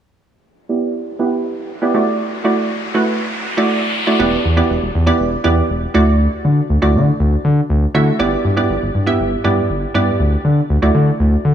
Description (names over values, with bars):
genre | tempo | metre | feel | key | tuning
pop | 120 BPM | 4/4 | straight | unclear | A4 = 440 Hz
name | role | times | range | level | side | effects
riser | sound effects | 1.3-4.2 s | none | -25 LUFS | left 1 dB | none
hollow square pluck | accompaniment | 0.7-11.5 s | A3 to E5 | -17 LUFS | right 2 dB | chorus, low-pass filter
round analog bass | bass | 4.2-11.5 s | E1 to D3 | -15 LUFS | equal | none
room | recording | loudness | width
light reverb | small room ambience | -14 LUFS | side -9 dB against mid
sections
0.2-4.2 A section; 4.2-11.5 B section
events
filter sweep on synth pluck 0.2-4.2; riser 1.3-4.2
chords
0.2 Em7; 1.9 Dadd9; 4.2 Em7; 5.9 Dadd9; 8.2 G6; 10.2 Dadd9